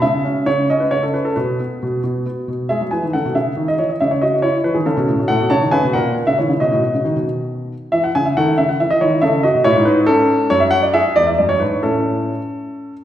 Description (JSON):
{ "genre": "classical-period piano sonatina", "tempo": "92 BPM (dotted quarters)", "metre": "6/8", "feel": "straight", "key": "unclear", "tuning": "A4 = 445 Hz", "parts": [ { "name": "warm grand piano", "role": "solo", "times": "0.0-12.9 s", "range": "E2 to A5", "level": "-15 LUFS", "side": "equal", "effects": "none" } ], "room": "wet recital hall reverb, RT60 1.6 s", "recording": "recorded in a church or concert hall", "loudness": "-14 LUFS", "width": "side -11 dB against mid", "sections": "0.0-2.7 A section; 2.7-13.0 B section", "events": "none", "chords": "0.0 C#m; 1.4 G#m/B; 2.0 B5; 2.7 E; 3.4 C#m; 4.0 A/C#; 5.3 Amaj13; 5.9 F#7/A#; 6.6 B; 7.9 F#m13; 8.6 C#m; 9.2 A; 10.5 E13/F#; 11.2 E7; 11.8 A", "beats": "| 0.04 0.70 | 1.37 2.04 | 2.70 3.35 | 4.00 4.64 | 5.29 5.94 | 6.60 7.27 | 7.93 8.59 | 9.23 9.88 | 10.52 11.18 | 11.84 12.52" }